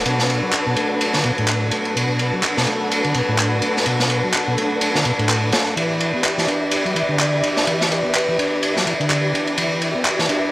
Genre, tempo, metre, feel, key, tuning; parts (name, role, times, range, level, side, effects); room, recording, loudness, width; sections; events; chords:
breakbeat, breaks; 126 BPM; 4/4; swing 58% on 16ths; B minor; A4 = 440 Hz
percussive tonewheel organ; sustained chords; 0.0-10.5 s; E3 to B4; -31 LUFS; equal
overdriven combo organ; riff; 0.0-10.5 s; A2 to D4; -23 LUFS; equal; low-pass filter, tape echo
dark studio string section; stabs; 0.0-10.5 s; D4 to E5; -23 LUFS; left 1 dB; low-pass filter, tape echo
crunchy breakbeat drum kit; drums; 0.1-10.4 s; ride cymbal, snare drum; -20 LUFS; equal; high-pass filter on kick, high-pass filter on cymbals, high-pass filter on snare, high-pass filter on room
electronic handclaps; drums; 0.5-10.2 s; -22 LUFS; equal
marimba with medium mallets; melody; 7.2-8.3 s; B4 to D5; -26 LUFS; equal; telephone sound, tape echo
light reverb, small room ambience; dry, gritty hardware recording, vinyl crackle; -16 LUFS; side -18 dB against mid
0.0-10.5 A section
filter sweep on transistor combo organ 0.0-10.5
0.0 Bm7; 5.8 Em7